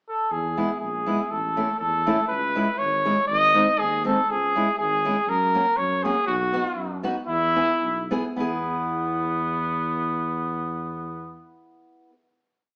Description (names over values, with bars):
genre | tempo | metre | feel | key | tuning
alpine folk, alpine dance band | 105-122 BPM | 2/4 | straight | E major | A4 = 439 Hz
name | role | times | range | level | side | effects
mellow trumpet | melody | 0.1-11.4 s | B3 to D#5 | -25 LUFS | equal | none
dark tuba | bass | 0.3-11.4 s | G#1 to F#2 | -34 LUFS | equal | none
fingerpicked steel-string acoustic guitar | accompaniment | 0.6-12.1 s | G#3 to G#4 | -30 LUFS | equal | none
room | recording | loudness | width
wet stone room reverb, RT60 1.1 s | band playing live in one room, small speaker sound | -24 LUFS | mono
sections
0.0-0.3 pickup bar; 0.3-8.4 A section; 8.4-10.6 final chord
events
slowing down 6.3-8.4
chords
0.3 E; 1.3 A; 2.3 C#m; 3.3 G#; 4.3 C#m; 5.3 F#; 6.3 B; 7.3 E